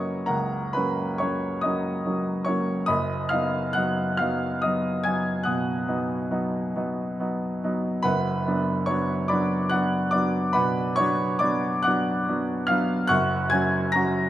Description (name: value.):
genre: classical, romantic nocturne for solo piano.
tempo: 47 BPM (dotted quarters).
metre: 12/8.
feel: rubato.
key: unclear.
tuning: A4 = 440 Hz.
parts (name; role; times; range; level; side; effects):
clear upright piano; solo; 0.0-14.3 s; F#1 to A#6; -22 LUFS; equal; none.
room: moderate recital hall reverb, RT60 1.6 s.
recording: close, detailed microphones.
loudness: -22 LUFS.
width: side -13 dB against mid.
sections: 0.0-14.3 A section.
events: none.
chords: 0.0 F#; 2.9 B/F#; 8.1 Bm/F#; 13.1 F#.